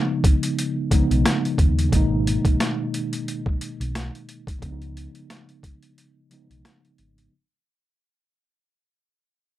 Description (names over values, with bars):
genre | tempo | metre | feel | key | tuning
hip hop, boom-bap hip-hop | 89 BPM | 4/4 | swing 56% on 16ths | unclear | A4 = 440 Hz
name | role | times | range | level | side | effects
mellow tine electric piano | accompaniment | 0.0-7.3 s | B2 to D#4 | -25 LUFS | equal | medium stereo tremolo, cassette tape, high-pass filter, low-pass filter
boom bap sampler-style drum kit | drums | 0.2-7.3 s | hi-hat, kick drum, rim click, snare drum | -22 LUFS | equal | overdrive
hollow-body short-scale fingered electric bass | bass | 1.1-7.3 s | G#1 to D#2 | -24 LUFS | equal | none
room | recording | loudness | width
light reverb | none | -20 LUFS | side -14 dB against mid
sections
0.0-7.3 A section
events
fade-out 0.0-7.3; filter sweep on tine electric piano 0.0-7.3; break 6.0-7.3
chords
0.0 C#7; 1.9 G#madd9; 4.6 C#7